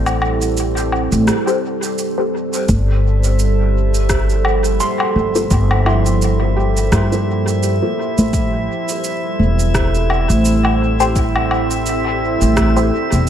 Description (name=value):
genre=ambient dub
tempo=85 BPM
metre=4/4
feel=swing 56% on 16ths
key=G dorian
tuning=A4 = 440 Hz
part: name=deep dark ambient pad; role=sustained chords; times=0.0-13.3 s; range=F3 to C5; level=-20 LUFS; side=right 2 dB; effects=chorus, built-in reverb
part: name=felt-muted upright piano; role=arpeggios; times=0.0-10.1 s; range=E4 to C6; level=-27 LUFS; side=right 1 dB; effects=dub echo
part: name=upright bass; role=bass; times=0.0-13.3 s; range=E1 to G2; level=-16 LUFS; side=equal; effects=none
part: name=electronic shaker, woodblock and rim click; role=drums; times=0.1-13.2 s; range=none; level=-23 LUFS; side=equal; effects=dub echo
part: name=filtered dub chord stab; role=stabs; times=1.5-13.0 s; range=F4 to C5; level=-23 LUFS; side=left 4 dB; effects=phaser, lush chorus, dub echo
part: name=electronic kick drum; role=drums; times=2.7-12.7 s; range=none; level=-20 LUFS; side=equal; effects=overdrive
part: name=drifting glass-harmonics texture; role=texture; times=3.1-13.3 s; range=E4 to E5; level=-25 LUFS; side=equal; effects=chorus, built-in reverb
room=light reverb, digital ambience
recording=none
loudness=-14 LUFS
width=side -10 dB against mid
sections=0.0-2.7 A section; 2.7-13.3 B section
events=filter sweep on synth stab 0.0-2.7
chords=0.0 Am7; 2.7 Gm11; 8.3 Am7